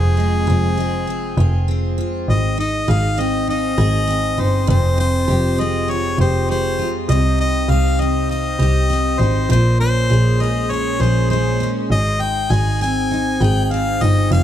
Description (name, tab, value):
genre	acoustic pop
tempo	100 BPM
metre	4/4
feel	straight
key	Ab major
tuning	A4 = 440 Hz
part	clear harmonica	melody	0.0-14.4 s	Ab4 to Ab5	-22 LUFS	left 2 dB	ping-pong delay
part	picked steel-string acoustic guitar	accompaniment	0.0-14.4 s	F2 to Ab4	-21 LUFS	equal	double-tracked left and right
part	clear double bass	bass	0.0-14.4 s	F1 to C2	-18 LUFS	equal	none
room	studio ambience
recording	dark, warm production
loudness	-15 LUFS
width	side -10 dB against mid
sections	0.0-2.3 A section; 2.3-14.4 B section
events	none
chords	0.0 Fm; 2.3 Ab; 4.7 Fmadd9; 7.1 Cm; 9.5 Bbm7; 11.9 Ab